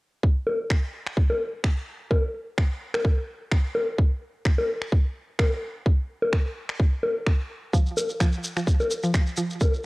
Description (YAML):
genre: minimal techno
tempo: 128 BPM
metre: 4/4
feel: swing 55% on 16ths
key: unclear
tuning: A4 = 436 Hz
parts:
  - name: electronic kick drum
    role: drums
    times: 0.2-9.7 s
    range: none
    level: -21 LUFS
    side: equal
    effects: cassette tape
  - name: bongos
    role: percussion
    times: 0.5-9.7 s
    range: none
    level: -26 LUFS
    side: left 1 dB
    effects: cassette tape
  - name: electronic finger snaps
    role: drums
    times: 0.7-9.2 s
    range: none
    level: -34 LUFS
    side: equal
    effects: cassette tape
  - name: mallet-like synth pluck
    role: riff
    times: 7.7-9.4 s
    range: F3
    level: -29 LUFS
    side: right 1 dB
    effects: chorus, phaser, cassette tape, sidechain pumping, tape echo
  - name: shekere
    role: percussion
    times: 7.7-9.8 s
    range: none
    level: -34 LUFS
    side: equal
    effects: none
room: little or no reverb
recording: home recording on cassette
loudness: -22 LUFS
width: side -23 dB against mid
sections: 0.2-9.9 A section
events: none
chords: none